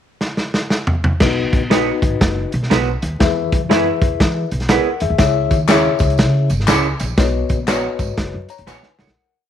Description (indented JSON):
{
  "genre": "uptempo 1960s-style soul",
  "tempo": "121 BPM",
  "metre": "4/4",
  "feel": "swing 64% on 8ths",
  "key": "unclear",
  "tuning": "A4 = 440 Hz",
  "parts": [
    { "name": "crunchy breakbeat drum kit", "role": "drums", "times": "0.2-9.2 s", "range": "crash cymbal, hi-hat, kick drum, snare drum, toms", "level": "-17 LUFS", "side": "equal", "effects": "none" },
    { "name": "mellow reed electric piano", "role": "accompaniment", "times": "1.2-9.5 s", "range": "C#3 to A#5", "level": "-20 LUFS", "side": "left 10 dB", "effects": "fast tremolo" },
    { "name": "upright bass", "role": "bass", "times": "1.2-9.1 s", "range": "F#1 to E3", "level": "-21 LUFS", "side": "equal", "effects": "none" },
    { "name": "electric guitar through a small old amp", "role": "stabs", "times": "1.7-9.1 s", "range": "B3 to C#5", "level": "-20 LUFS", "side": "right 10 dB", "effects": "lush chorus" },
    { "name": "tambourine and handclaps", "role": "percussion", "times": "5.2-9.1 s", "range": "none", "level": "-24 LUFS", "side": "left 6 dB", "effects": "none" }
  ],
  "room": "light reverb, studio reverb",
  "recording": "1960s-style stereo with parts hard left and right, vinyl crackle",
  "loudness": "-14 LUFS",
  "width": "side -10 dB against mid",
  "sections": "0.0-1.2 pickup bar; 1.2-9.2 verse",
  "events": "drum fill 0.2-1.2, 8.7-9.2; fade-out 7.2-9.2",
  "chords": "0.0 N.C.; 1.2 B; 3.2 E; 5.2 C#m; 7.2 Badd9"
}